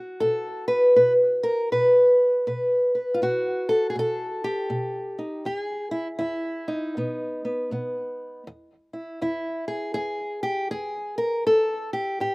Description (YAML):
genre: acoustic country blues, solo or duo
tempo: 80 BPM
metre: 4/4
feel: swing 63% on 8ths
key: unclear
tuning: A4 = 440 Hz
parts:
  - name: fingerpicked old ladder-braced acoustic guitar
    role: solo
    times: 0.0-12.3 s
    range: E2 to B4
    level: -22 LUFS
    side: equal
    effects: none
room: little or no reverb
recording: recorded outdoors, with no room sound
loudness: -22 LUFS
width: side -26 dB against mid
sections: 0.0-8.5 A section; 8.5-12.3 A section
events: none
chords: 0.0 B7(no3); 5.5 N.C.